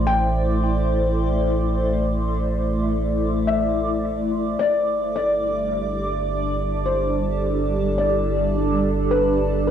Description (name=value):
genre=ambient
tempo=53 BPM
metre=4/4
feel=straight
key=unclear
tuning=A4 = 440 Hz
part: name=felt-muted upright piano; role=melody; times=0.0-9.7 s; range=B4 to G5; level=-24 LUFS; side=left 4 dB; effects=cassette tape, analog delay
part: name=shimmering ambient pad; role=sustained chords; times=0.0-9.7 s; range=G3 to D5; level=-22 LUFS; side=right 1 dB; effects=chorus, built-in reverb, phaser
part: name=warm sub bass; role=bass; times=0.0-9.7 s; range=G1 to A1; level=-25 LUFS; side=right 1 dB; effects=none
room=wet studio reverb, RT60 0.6 s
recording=home recording on cassette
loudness=-19 LUFS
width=side -9 dB against mid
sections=0.0-9.7 A section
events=none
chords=0.0 Am7; 4.6 G5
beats=| 0.08 1.22 2.35 3.48 | 4.61 5.75 6.88 8.01 | 9.14